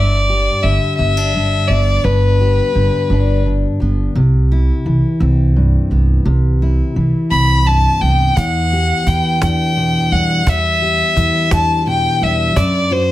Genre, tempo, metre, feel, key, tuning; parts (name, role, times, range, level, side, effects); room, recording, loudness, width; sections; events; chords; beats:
indie folk with a building arrangement; 57 BPM (dotted quarters); 6/8; straight; G major; A4 = 436 Hz
rich fiddle; melody; 0.0-3.4, 7.3-13.1 s; B4 to B5; -16 LUFS; left 2 dB; slapback echo
fingerpicked steel-string acoustic guitar; accompaniment; 0.0-13.1 s; E2 to G4; -18 LUFS; left 1 dB
upright bass; bass; 0.0-13.1 s; G1 to F#2; -15 LUFS; right 1 dB
cajon; drums; 8.4-13.0 s; -21 LUFS; right 1 dB
small room ambience; -12 LUFS; side -15 dB against mid
0.0-13.1 A section
0.0 G; 4.2 Cmaj7; 8.4 Em7; 12.6 D7/F#
0.99 | 2.04 3.10 | 4.15 5.21 | 6.26 7.31 | 8.36 9.41 | 10.47 11.52 | 12.57